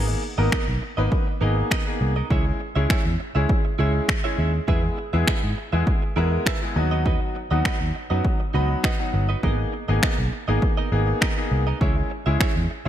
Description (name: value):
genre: dance-pop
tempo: 101 BPM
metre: 4/4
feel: straight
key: G# minor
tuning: A4 = 442 Hz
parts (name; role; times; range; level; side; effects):
- clear concert grand piano; accompaniment; 0.0-12.9 s; F#3 to B5; -27 LUFS; left 1 dB; sidechain pumping
- direct-recorded clean electric guitar; riff; 0.0-12.9 s; B3 to E5; -31 LUFS; right 7 dB; wide subtle chorus
- vintage muted fingered electric bass; bass; 0.0-12.9 s; G1 to G#2; -22 LUFS; equal; sidechain pumping
- punchy analog drum machine; drums; 0.5-12.6 s; finger snaps, kick drum; -23 LUFS; equal; gated reverb
room: light reverb, digital ambience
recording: bright 1980s-style digital production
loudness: -20 LUFS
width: side -11 dB against mid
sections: 0.0-12.9 A section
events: hi-hats muted 7.1-9.4; grand piano fill 8.2-9.4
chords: 0.0 G#madd9; 2.3 C#m; 4.7 E; 6.8 B/D#; 9.4 G#madd9; 11.8 C#m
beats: 0.52 1.12 1.71 | 2.31 2.90 3.49 4.09 | 4.68 5.28 5.87 6.46 | 7.06 7.65 8.25 8.84 | 9.43 10.03 10.62 11.22 | 11.81 12.40